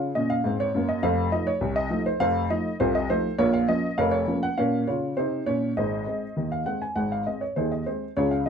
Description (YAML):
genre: ragtime piano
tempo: 101 BPM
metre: 2/4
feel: straight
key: unclear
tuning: A4 = 445 Hz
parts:
  - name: warm upright piano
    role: solo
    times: 0.0-8.5 s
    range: F1 to Ab5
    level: -23 LUFS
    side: equal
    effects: none
room: moderate club reverb, RT60 0.5 s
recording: dark, warm production, nothing above 10.4 kHz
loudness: -23 LUFS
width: side -7 dB against mid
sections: 0.0-8.5 A section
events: none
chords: 0.0 Db; 1.0 F7; 3.4 Bbm; 5.8 Ab